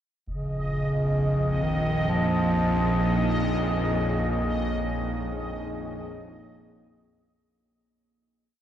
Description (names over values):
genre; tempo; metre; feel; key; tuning
dark ambient drone; free time; none; none; Bb minor; A4 = 443 Hz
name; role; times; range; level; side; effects
mellow bass clarinet; melody; 0.3-3.9 s; Db3 to F3; -26 LUFS; right 1 dB; dub echo
deep dark ambient pad; sustained chords; 1.6-7.5 s; Bb3 to Db5; -33 LUFS; equal; chorus, built-in reverb
bowed-like drone; drone; 0.5-7.6 s; Bb1 to F2; -28 LUFS; equal; built-in reverb
concert bass drum; percussion; 0.3-0.5 s; none; -41 LUFS; equal; low-pass filter on kick
bubbling stepped-filter texture; texture; 0.4-7.5 s; Eb5; -32 LUFS; equal; chorus, built-in reverb, shimmer reverb
room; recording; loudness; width
wet spring reverb, RT60 2.5 s; echo-heavy mix; -23 LUFS; side -10 dB against mid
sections
0.3-7.5 A section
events
fade-in on ambient pad 0.3-7.5; fade-in on drum 0.3-7.5; fade-out 3.9-7.5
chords
0.3 Bbm